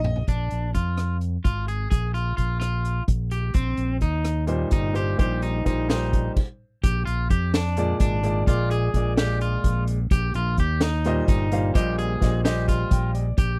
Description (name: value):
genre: progressive instrumental, band music in an uneven meter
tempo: 256 BPM (eighths)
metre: 7/8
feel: straight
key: Bb mixolydian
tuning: A4 = 441 Hz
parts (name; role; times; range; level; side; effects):
- clear concert grand piano; accompaniment; 0.0-0.2, 4.5-13.4 s; Bb2 to G5; -29 LUFS; equal; none
- overdriven fingered electric bass; bass; 0.0-13.6 s; G1 to F2; -27 LUFS; equal; none
- street-band drum kit; drums; 0.0-13.5 s; crash cymbal, hi-hat, kick drum, rim click, snare drum, toms; -25 LUFS; equal; none
- electric guitar at the edge of break-up; arpeggios; 0.3-13.6 s; C4 to Ab4; -32 LUFS; equal; none
room: little or no reverb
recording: dry, close 1970s-style studio recording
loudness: -24 LUFS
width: mono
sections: 0.3-6.8 A section; 6.8-13.6 B section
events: drum fill 0.0; stop 6.4-6.8; grand piano fill 12.7-13.4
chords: 0.3 Bb7; 3.6 Eb6; 6.8 Bb7; 10.1 Abmaj7